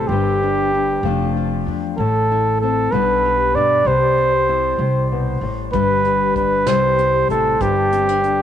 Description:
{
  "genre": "acoustic folk duo or small band",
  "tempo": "64 BPM (dotted quarters)",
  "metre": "6/8",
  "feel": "straight",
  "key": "G mixolydian",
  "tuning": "A4 = 440 Hz",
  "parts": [
    { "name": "clear flugelhorn", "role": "melody", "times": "0.0-8.4 s", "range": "G4 to D5", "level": "-17 LUFS", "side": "right 2 dB", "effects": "tape echo" },
    { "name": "nylon-string guitar", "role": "accompaniment", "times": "0.0-8.4 s", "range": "G2 to G4", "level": "-22 LUFS", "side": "left 10 dB", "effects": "none" },
    { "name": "upright bass", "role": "bass", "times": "0.0-8.4 s", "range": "F1 to G2", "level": "-24 LUFS", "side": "right 1 dB", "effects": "none" },
    { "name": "soft brush drum kit", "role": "drums", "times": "5.7-8.4 s", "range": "hi-hat, kick drum, snare drum", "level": "-29 LUFS", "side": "right 5 dB", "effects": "none" }
  ],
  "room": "moderate spring reverb, RT60 2.2 s",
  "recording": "1960s-style stereo",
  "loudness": "-15 LUFS",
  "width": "side -9 dB against mid",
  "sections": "0.0-8.4 A section",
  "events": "none",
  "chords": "0.1 G5; 1.0 Dm/F; 2.0 Am; 2.9 G/B; 3.9 C; 5.7 G; 6.7 C; 7.6 G5"
}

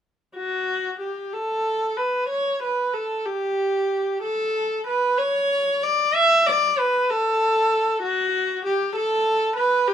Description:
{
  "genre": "classical, baroque-style suite movement for unaccompanied viola",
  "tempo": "63 BPM (dotted quarters)",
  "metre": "6/8",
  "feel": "rubato",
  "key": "unclear",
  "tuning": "A4 = 440 Hz",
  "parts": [
    { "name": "rich viola", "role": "solo", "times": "0.4-9.9 s", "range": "F#4 to E5", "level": "-20 LUFS", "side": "equal", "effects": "none" }
  ],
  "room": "moderate stone room reverb, RT60 1.0 s",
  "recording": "none",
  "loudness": "-20 LUFS",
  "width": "side -9 dB against mid",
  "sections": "0.3-9.9 A section",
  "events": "none",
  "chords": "none"
}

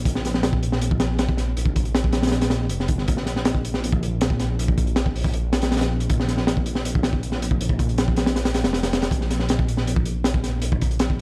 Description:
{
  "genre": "drum and bass, jungle",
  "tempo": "159 BPM",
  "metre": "4/4",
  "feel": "straight",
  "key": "unclear",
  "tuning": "A4 = 438 Hz",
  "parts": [
    { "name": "dark detuned saw bass", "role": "bass", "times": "0.0-11.2 s", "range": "F1 to Bb1", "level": "-24 LUFS", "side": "equal", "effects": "none" },
    { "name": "crunchy breakbeat drum kit", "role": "drums", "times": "0.1-11.2 s", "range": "hi-hat, kick drum, snare drum", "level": "-21 LUFS", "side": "equal", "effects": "none" }
  ],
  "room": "little or no reverb",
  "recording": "dry, gritty hardware recording, vinyl crackle",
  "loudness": "-19 LUFS",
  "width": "side -30 dB against mid",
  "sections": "0.0-11.2 A section",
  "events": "none",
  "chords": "none"
}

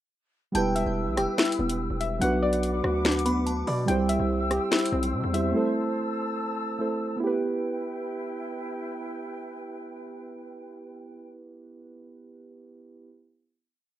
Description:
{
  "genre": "hip hop, drill",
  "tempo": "144 BPM",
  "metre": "4/4",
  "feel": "half-time",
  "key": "E minor",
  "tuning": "A4 = 441 Hz",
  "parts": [
    { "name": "muted felt-like synth keys", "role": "accompaniment", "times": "0.5-13.1 s", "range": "F#3 to C5", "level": "-29 LUFS", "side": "right 2 dB", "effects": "chorus, low-pass filter" },
    { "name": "large flute ensemble", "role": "sustained chords", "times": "0.5-11.3 s", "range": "E4 to E6", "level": "-36 LUFS", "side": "left 2 dB", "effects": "none" },
    { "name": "distorted 808-style bass", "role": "bass", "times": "0.5-5.5 s", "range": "E1 to C3", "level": "-30 LUFS", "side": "equal", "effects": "distortion" },
    { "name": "drill drum kit", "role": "drums", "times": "0.5-5.4 s", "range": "finger snaps, hi-hat, rim click, snare drum", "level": "-28 LUFS", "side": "left 1 dB", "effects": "none" },
    { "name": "delicate synth tine bell", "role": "second line", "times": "0.6-3.9 s", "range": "G5 to B5", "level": "-35 LUFS", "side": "right 2 dB", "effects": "chorus, digital delay" },
    { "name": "soft round pluck", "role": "arpeggios", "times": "0.6-5.6 s", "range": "B3 to G5", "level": "-28 LUFS", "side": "left 2 dB", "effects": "chorus, low-pass filter, digital delay" }
  ],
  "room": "little or no reverb",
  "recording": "rough home demo mix",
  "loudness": "-24 LUFS",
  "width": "side -12 dB against mid",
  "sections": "0.5-7.2 hook; 7.2-10.5 final chord",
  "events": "none",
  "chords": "0.5 Em; 2.2 Bm; 3.9 C; 5.5 Am; 7.2 Em"
}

